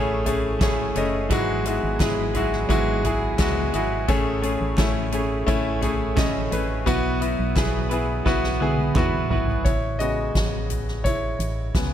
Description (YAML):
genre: piano-driven pop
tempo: 86 BPM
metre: 4/4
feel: straight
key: unclear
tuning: A4 = 440 Hz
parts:
  - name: clear concert grand piano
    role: accompaniment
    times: 0.0-11.9 s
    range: G#2 to D#5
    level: -24 LUFS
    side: left 2 dB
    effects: none
  - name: twelve-string electric guitar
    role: riff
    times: 0.0-9.7 s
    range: G#2 to B4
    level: -30 LUFS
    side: right 8 dB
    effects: analog chorus
  - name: organ-like FM bass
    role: bass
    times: 0.0-11.9 s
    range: F#1 to E2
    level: -28 LUFS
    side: equal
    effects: none
  - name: soft-mallet drum kit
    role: drums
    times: 0.3-11.9 s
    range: hi-hat, kick drum, snare drum, toms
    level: -26 LUFS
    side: right 1 dB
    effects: none
  - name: group handclap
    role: percussion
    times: 0.6-9.1 s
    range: none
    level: -40 LUFS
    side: left 1 dB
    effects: none
room: light reverb, studio ambience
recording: none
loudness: -20 LUFS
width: side -10 dB against mid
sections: 0.0-9.7 A section; 9.7-11.9 B section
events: drum fill 8.3-9.7; grand piano solo 9.7-11.9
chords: 0.0 Amaj7; 1.3 Eadd9/G#; 4.1 Amaj7; 6.9 Bsus4; 9.7 Amaj7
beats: 0.61 | 1.31 2.00 2.70 3.39 | 4.09 4.78 5.48 6.17 | 6.87 7.57 8.26 8.96 | 9.65 10.35 11.05 11.74